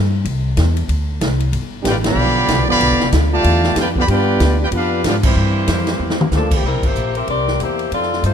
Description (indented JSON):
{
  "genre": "jazz, big band swing",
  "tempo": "188 BPM",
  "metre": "4/4",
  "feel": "swing 61% on 8ths",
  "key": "C major",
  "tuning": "A4 = 440 Hz",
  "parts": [
    { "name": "upright bass", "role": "bass", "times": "0.0-8.3 s", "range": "F1 to Ab2", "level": "-18 LUFS", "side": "equal", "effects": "none" },
    { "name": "swinging big-band drum kit", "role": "drums", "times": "0.3-8.3 s", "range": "crash cymbal, hi-hat, kick drum, ride cymbal, snare drum, toms", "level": "-21 LUFS", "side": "equal", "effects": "none" },
    { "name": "clear trombone section", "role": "second line", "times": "1.8-6.5 s", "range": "D3 to G4", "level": "-21 LUFS", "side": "right 1 dB", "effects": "none" },
    { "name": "clear trumpet section", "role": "melody", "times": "1.9-6.5 s", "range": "Bb3 to B5", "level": "-19 LUFS", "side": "right 1 dB", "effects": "none" },
    { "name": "clear saxophone section", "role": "melody", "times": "6.4-8.3 s", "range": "E3 to E5", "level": "-19 LUFS", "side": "left 3 dB", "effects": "none" }
  ],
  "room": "light reverb",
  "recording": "none",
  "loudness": "-14 LUFS",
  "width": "side -8 dB against mid",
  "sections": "0.0-6.6 A section; 6.6-8.3 B section",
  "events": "band accent 2.0, 5.2, 6.8; drum fill 6.0-6.3",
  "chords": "0.0 C; 1.5 G7; 5.4 C7"
}